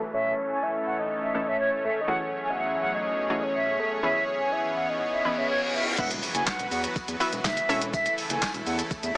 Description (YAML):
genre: dance-pop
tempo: 123 BPM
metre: 4/4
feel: straight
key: E major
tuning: A4 = 439 Hz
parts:
  - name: analog pluck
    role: accompaniment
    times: 0.0-9.2 s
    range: E3 to E5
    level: -30 LUFS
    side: equal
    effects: chorus, sidechain pumping, low-pass filter
  - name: supersaw pad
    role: sustained chords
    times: 0.0-9.2 s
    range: E2 to C#5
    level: -31 LUFS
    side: equal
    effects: sidechain pumping, low-pass filter
  - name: downlifter, reverse cymbal and impact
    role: sound effects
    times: 5.2-7.9 s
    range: none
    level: -33 LUFS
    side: left 1 dB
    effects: none
  - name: silver concert flute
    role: melody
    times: 0.1-9.1 s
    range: C#5 to G#5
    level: -29 LUFS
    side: equal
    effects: sidechain pumping, low-pass filter
  - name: soft octave-layered synth lead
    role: melody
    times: 0.1-5.7 s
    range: A4 to F#5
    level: -29 LUFS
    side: left 1 dB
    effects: chorus, low-pass filter, digital delay
  - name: round analog bass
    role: bass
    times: 6.0-9.1 s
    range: E1 to E2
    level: -34 LUFS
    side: equal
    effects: sidechain pumping
  - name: crisp 8-bit digital drum machine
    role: drums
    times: 6.0-9.1 s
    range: crash cymbal, handclaps, hi-hat, kick drum, shaker, snare drum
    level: -30 LUFS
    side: equal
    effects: overdrive
  - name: tambourine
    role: percussion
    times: 6.0-9.0 s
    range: none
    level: -45 LUFS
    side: left 1 dB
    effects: none
room: moderate digital room reverb, RT60 1.1 s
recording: small speaker sound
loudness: -24 LUFS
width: side -23 dB against mid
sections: 0.0-6.0 A section; 6.0-9.2 B section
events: filter sweep 0.0-6.0; reverse cymbal 5.2-6.0; drop 6.0-9.2; impact 6.0-7.9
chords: 0.0 A/E; 2.1 F#madd9/E; 4.0 C#m7/E; 6.0 Esus2; 7.7 A/E